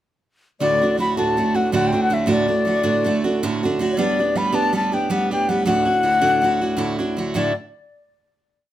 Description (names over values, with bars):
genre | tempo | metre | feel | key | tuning
celtic folk, Celtic slip jig | 107 BPM (dotted quarters) | 9/8 | straight | D major | A4 = 440 Hz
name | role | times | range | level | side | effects
wooden flute | melody | 0.6-7.5 s | C#5 to B5 | -20 LUFS | left 3 dB | plate reverb
picked steel-string acoustic guitar | accompaniment | 0.6-7.5 s | D2 to G4 | -20 LUFS | right 3 dB | none
hand-pumped harmonium | drone | 0.6-7.4 s | D2 to A2 | -29 LUFS | left 2 dB | none
room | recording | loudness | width
moderate studio reverb, RT60 0.6 s | close, detailed microphones | -17 LUFS | side -12 dB against mid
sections
0.6-7.3 A section; 7.3-8.7 final chord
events
none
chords
0.6 D; 4.0 G; 5.7 Dadd9